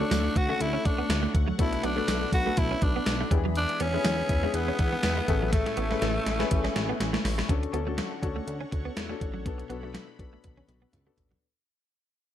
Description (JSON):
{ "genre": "1980s-style pop", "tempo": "122 BPM", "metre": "4/4", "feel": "swing 55% on 16ths", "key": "unclear", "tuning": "A4 = 440 Hz", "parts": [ { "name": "growling tenor saxophone", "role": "melody", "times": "0.0-7.0 s", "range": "A3 to F#4", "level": "-30 LUFS", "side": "equal", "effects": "slapback echo" }, { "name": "warm concert grand piano", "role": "accompaniment", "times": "0.0-11.4 s", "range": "A2 to C#5", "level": "-33 LUFS", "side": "left 9 dB", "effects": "none" }, { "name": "phased analog pad", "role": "sustained chords", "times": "0.0-11.4 s", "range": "A3 to C#6", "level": "-38 LUFS", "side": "right 1 dB", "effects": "phaser, chorus" }, { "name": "direct-recorded clean electric guitar", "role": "riff", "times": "0.0-11.4 s", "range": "F#3 to C#4", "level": "-35 LUFS", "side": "right 5 dB", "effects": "analog chorus, slapback echo" }, { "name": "chorused synth bass", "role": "bass", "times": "0.0-11.4 s", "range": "A1 to E2", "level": "-31 LUFS", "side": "equal", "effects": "none" }, { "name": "gated 80s digital drum machine", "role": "drums", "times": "0.1-11.4 s", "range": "hi-hat, kick drum, snare drum, tambourine, toms", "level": "-28 LUFS", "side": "equal", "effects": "gated reverb, gated reverb snare" } ], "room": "little or no reverb", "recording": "dry, close 1970s-style studio recording", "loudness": "-25 LUFS", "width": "side -11 dB against mid", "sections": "0.0-7.5 A section; 7.5-11.4 B section", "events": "drum fill 5.5-7.5, 10.4-11.4; fade-out 7.5-11.4", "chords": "0.0 Dmaj7; 1.6 Bm7; 3.3 E7; 5.3 Amaj7; 7.5 Dmaj7; 9.5 Bm7" }